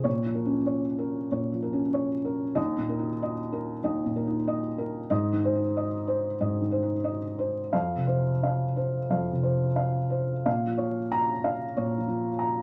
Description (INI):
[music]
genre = neoclassical minimalist piano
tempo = 84-96 BPM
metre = 4/4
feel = rubato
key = Bb minor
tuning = A4 = 439 Hz
[part]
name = felt-muted upright piano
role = solo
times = 0.0-12.6 s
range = Eb2 to Bb5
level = -28 LUFS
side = equal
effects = none
[sound]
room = wet studio ambience, RT60 0.5 s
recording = vinyl crackle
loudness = -28 LUFS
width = mono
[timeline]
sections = 0.0-10.5 A section; 10.5-12.6 B section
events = none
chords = 0.1 Bbm; 2.6 Eb5; 5.1 Ab; 7.7 F5; 10.5 Bbm